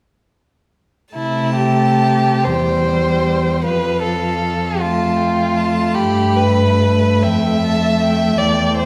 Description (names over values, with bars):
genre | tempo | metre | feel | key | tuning
classical, slow romantic movement for string quartet | 44-53 BPM (dotted quarters) | 6/8 | rubato | C major | A4 = 440 Hz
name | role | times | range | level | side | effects
warm violin | melody | 1.1-8.9 s | F5 to B5 | -30 LUFS | equal | none
warm violin | second line | 1.1-8.9 s | E4 to E5 | -20 LUFS | equal | none
warm viola | accompaniment | 1.2-8.9 s | F3 to A3 | -22 LUFS | equal | none
rich cello | bass | 1.2-8.9 s | E2 to C3 | -21 LUFS | equal | none
room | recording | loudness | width
wet scoring stage reverb, RT60 1.6 s | heard from further back in the room | -16 LUFS | mono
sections
1.2-8.9 A section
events
none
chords
1.2 C; 3.6 F; 6.0 G